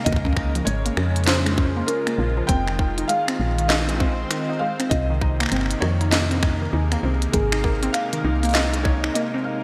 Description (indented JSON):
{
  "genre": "IDM",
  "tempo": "99 BPM",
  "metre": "4/4",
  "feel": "swing 62% on 16ths",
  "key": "F minor",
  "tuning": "A4 = 440 Hz",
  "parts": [
    { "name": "felt-muted upright piano", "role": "melody", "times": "0.0-9.6 s", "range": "Ab4 to G5", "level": "-30 LUFS", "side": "equal", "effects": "analog chorus, digital delay" },
    { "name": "warm analog pad", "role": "sustained chords", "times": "0.0-9.6 s", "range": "C3 to C5", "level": "-31 LUFS", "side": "equal", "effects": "chorus, vintage 12-bit sampler grit" },
    { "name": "warbly dusty pluck", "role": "arpeggios", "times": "0.1-9.4 s", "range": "Eb3 to Eb4", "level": "-30 LUFS", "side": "equal", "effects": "chorus, digital delay" },
    { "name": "woody FM bass", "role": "bass", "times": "0.1-9.1 s", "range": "F1 to F2", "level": "-26 LUFS", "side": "equal", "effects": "none" },
    { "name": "electronic kick drum", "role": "drums", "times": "0.1-9.0 s", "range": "none", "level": "-25 LUFS", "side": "equal", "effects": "studio reverb" },
    { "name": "glitchy drum kit", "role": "drums", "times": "0.1-9.3 s", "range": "finger snaps, hi-hat, snare drum", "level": "-28 LUFS", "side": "equal", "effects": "studio reverb, gated reverb" }
  ],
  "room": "moderate lush hall reverb, RT60 2.9 s",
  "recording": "bright 1980s-style digital production",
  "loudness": "-22 LUFS",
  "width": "mono",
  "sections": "0.0-9.6 A section",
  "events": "none",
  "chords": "0.1 Db6; 2.5 Fm7; 4.9 Cm7; 7.3 Abadd9",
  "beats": "| 0.06 0.67 1.27 1.88 | 2.49 3.09 3.70 4.30 | 4.91 5.52 6.12 6.73 | 7.34 7.94 8.55 9.15"
}